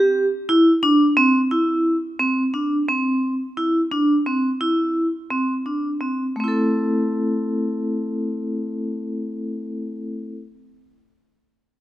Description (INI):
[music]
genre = contemporary instrumental, contemporary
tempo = 173 BPM (eighths)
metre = 7/8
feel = straight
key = unclear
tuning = A4 = 441 Hz
[part]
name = vibraphone with hard mallets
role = solo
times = 0.0-10.3 s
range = A3 to A4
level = -19 LUFS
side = equal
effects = none
[sound]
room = light reverb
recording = close, detailed microphones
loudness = -19 LUFS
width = side -14 dB against mid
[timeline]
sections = 0.0-1.5 A section; 1.5-6.4 B section; 6.4-8.8 C section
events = none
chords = 0.0 Cadd9; 6.4 Am